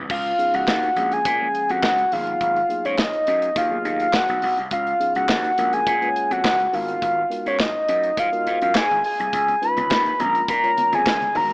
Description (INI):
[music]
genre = early-eighties boogie funk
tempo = 104 BPM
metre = 4/4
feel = straight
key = G# dorian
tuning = A4 = 440 Hz
[part]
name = gritty slap bass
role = bass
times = 0.0-11.5 s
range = G#1 to A#2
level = -27 LUFS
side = equal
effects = overdrive
[part]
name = soft octave-layered synth lead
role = melody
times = 0.1-11.5 s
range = C#5 to B5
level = -19 LUFS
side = equal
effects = chorus
[part]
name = modern studio drum kit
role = drums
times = 0.1-11.5 s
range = crash cymbal, handclaps, hi-hat, kick drum, snare drum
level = -25 LUFS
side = equal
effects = none
[part]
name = mellow tine electric piano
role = accompaniment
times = 0.4-11.5 s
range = E#3 to C#5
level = -32 LUFS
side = equal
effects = medium stereo tremolo
[part]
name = congas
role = percussion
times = 9.3-11.5 s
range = none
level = -35 LUFS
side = equal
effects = none
[sound]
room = moderate lush hall reverb, RT60 2.4 s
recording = rough home demo mix, AM radio sound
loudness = -18 LUFS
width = side -25 dB against mid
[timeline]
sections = 0.1-11.5 A section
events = none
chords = 0.1 C#9; 1.0 A#m7; 2.1 G#m9; 4.7 C#9; 5.6 A#m7; 6.7 G#m9; 9.3 C#9; 10.2 A#m7